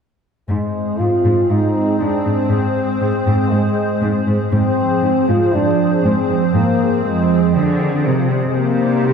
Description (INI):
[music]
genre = cinematic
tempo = 119 BPM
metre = 4/4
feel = straight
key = unclear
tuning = A4 = 440 Hz
[part]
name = hollow soft pad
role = sustained chords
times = 0.5-9.1 s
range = F3 to C5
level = -19 LUFS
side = right 2 dB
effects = ensemble chorus
[part]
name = warm French horn section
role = sustained chords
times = 0.5-9.1 s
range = D3 to G4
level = -19 LUFS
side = left 2 dB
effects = none
[part]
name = rich symphonic cello section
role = bass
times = 0.5-9.1 s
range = F2 to D3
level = -19 LUFS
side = equal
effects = none
[sound]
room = wet scoring stage reverb, RT60 1.5 s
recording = heard from further back in the room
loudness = -14 LUFS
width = side -6 dB against mid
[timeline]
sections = 0.5-9.1 A section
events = none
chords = 0.5 Ab; 4.5 Fm/Ab; 8.6 Cm7